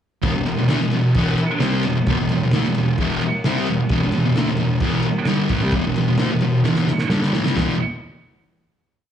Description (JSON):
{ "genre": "garage rock duo or trio", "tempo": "131 BPM", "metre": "4/4", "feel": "straight", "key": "E minor", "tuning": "A4 = 440 Hz", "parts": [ { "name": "thick fuzz guitar", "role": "riff", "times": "0.2-7.7 s", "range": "E2 to C4", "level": "-18 LUFS", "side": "equal", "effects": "distortion, slapback echo" }, { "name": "cloth-damped thuddy drum kit", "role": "drums", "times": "0.2-7.7 s", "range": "kick drum, ride cymbal, snare drum, toms", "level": "-24 LUFS", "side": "equal", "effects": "none" } ], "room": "small room ambience", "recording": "live gig heard through the venue's PA, club ambience", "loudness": "-17 LUFS", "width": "side -9 dB against mid", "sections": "0.2-7.6 riff; 7.6-9.1 final chord", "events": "drum fill 6.6-7.6", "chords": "0.2 Em; 7.6 E5", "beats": "| 0.23 0.70 1.16 1.62 | 2.08 2.54 2.99 3.45 | 3.90 4.36 4.82 5.27 | 5.73 6.18 6.64 7.10 | 7.56" }